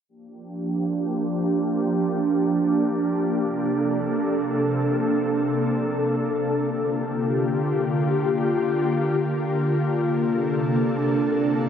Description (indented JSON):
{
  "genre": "hip hop",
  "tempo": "free time",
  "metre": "none",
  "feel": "none",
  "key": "G minor",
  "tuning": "A4 = 437 Hz",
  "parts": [
    { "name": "ethereal airy pad", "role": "solo", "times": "0.5-11.7 s", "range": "C3 to A4", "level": "-21 LUFS", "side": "equal", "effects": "ensemble chorus, built-in reverb, low-pass filter" }
  ],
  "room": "moderate lush hall reverb, RT60 2.3 s",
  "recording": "none",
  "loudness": "-21 LUFS",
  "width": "side -8 dB against mid",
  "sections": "0.1-11.7 A section",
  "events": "filter sweep on ambient pad 0.1-11.7",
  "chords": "0.1 Gm7; 3.4 Bbmaj9; 6.7 Gm7; 10.0 Bbmaj9",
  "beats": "free time"
}